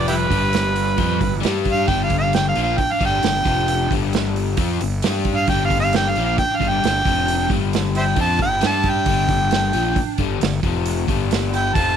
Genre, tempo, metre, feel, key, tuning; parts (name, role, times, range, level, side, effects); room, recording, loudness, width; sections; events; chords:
blues rock power trio and southern rock; 134 BPM; 4/4; straight; A4 = 437 Hz
clear harmonica; melody; 0.0-12.0 s; E4 to A5; -21 LUFS; equal; overdrive
smooth overdriven lead guitar; second line; 0.0-12.0 s; G3 to F4; -28 LUFS; right 12 dB
crunchy overdriven guitar; riff; 0.0-12.0 s; F2 to G4; -23 LUFS; left 11 dB
fuzz fingered electric bass; bass; 0.0-12.0 s; F1 to G2; -23 LUFS; equal; overdrive
vintage drum kit; drums; 0.1-11.9 s; hi-hat, kick drum, snare drum; -24 LUFS; right 4 dB
light reverb, small room ambience; 1960s-style stereo with parts hard left and right; -17 LUFS; side -8 dB against mid
0.0-12.0 A section
0.3 G; 3.5 F5; 3.9 G5; 7.1 F5; 7.5 G5; 10.6 F5; 11.1 G5